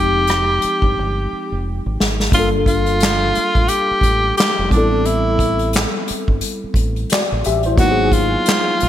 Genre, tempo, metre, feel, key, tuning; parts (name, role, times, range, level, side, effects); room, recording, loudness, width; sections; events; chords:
R&B, neo-soul; 88 BPM; 4/4; swing 57% on 16ths; A4 = 441 Hz
breathy tenor saxophone; melody; 0.0-8.9 s; D4 to G4; -18 LUFS; equal
tine electric piano; accompaniment; 0.0-8.9 s; F3 to E5; -21 LUFS; left 2 dB; ensemble chorus
deep dub fingered electric bass; bass; 0.0-8.9 s; F1 to Bb1; -21 LUFS; equal
unplugged drum kit; drums; 0.3-8.9 s; handclaps, hi-hat, kick drum, rim click, snare drum; -19 LUFS; equal; gated reverb
light reverb; bright 1980s-style digital production; -14 LUFS; side -11 dB against mid
0.0-2.3 A section; 2.3-8.9 B section
drum fill 1.0-2.3
0.0 Fm9; 2.3 Gm9; 4.7 Am9; 7.8 Abm9